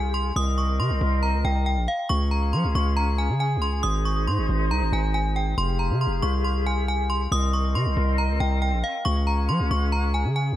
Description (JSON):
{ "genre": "hip hop, drill", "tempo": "138 BPM", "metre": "4/4", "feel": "half-time", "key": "F minor", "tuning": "A4 = 440 Hz", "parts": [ { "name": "metallic FM bell", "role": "melody", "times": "0.0-10.6 s", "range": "F5 to Eb6", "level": "-27 LUFS", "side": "equal", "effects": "chorus, analog delay" }, { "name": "small flute group", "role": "sustained chords", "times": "0.0-10.6 s", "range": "C4 to F5", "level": "-31 LUFS", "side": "left 1 dB", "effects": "none" }, { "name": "distorted 808-style bass", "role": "bass", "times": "0.0-10.6 s", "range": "F1 to F3", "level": "-23 LUFS", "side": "equal", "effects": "distortion" } ], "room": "little or no reverb", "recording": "echo-heavy mix", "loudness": "-21 LUFS", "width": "side -13 dB against mid", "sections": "0.0-5.6 A section; 5.6-10.6 A section", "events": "none", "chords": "0.4 Cm7; 2.1 Db; 3.8 Ab; 5.6 Fmadd9; 7.3 Cm7; 9.1 Db" }